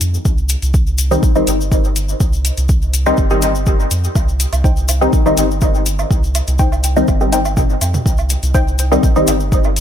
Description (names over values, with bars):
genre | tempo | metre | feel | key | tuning
dub techno | 123 BPM | 4/4 | straight | C minor | A4 = 442 Hz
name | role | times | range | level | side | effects
soft dub sub bass | bass | 0.0-9.8 s | G1 to F2 | -18 LUFS | equal | sidechain pumping
electronic hi-hat | drums | 0.0-9.8 s | none | -23 LUFS | equal | overdrive
cabasa | percussion | 0.0-9.8 s | none | -25 LUFS | left 6 dB | none
electronic kick drum | drums | 0.3-9.6 s | none | -15 LUFS | equal | none
filtered dub chord stab | stabs | 1.1-9.3 s | Eb3 to Eb4 | -17 LUFS | left 1 dB | chorus, phaser, sidechain pumping, dub echo
electronic woodblock and toms | percussion | 4.2-9.7 s | none | -27 LUFS | right 6 dB | sidechain pumping on perc, sidechain pumping on toms, dub echo
filtered dub chord stab | riff | 4.6-8.6 s | Eb4 to G5 | -23 LUFS | left 3 dB | chorus, sidechain pumping, dub echo
room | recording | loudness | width
light reverb | none | -12 LUFS | side -9 dB against mid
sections
0.0-9.8 A section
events
none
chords
0.0 Cm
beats
| 0.25 0.74 1.23 1.72 | 2.20 2.69 3.18 3.67 | 4.16 4.64 5.13 5.62 | 6.11 6.59 7.08 7.57 | 8.06 8.54 9.03 9.52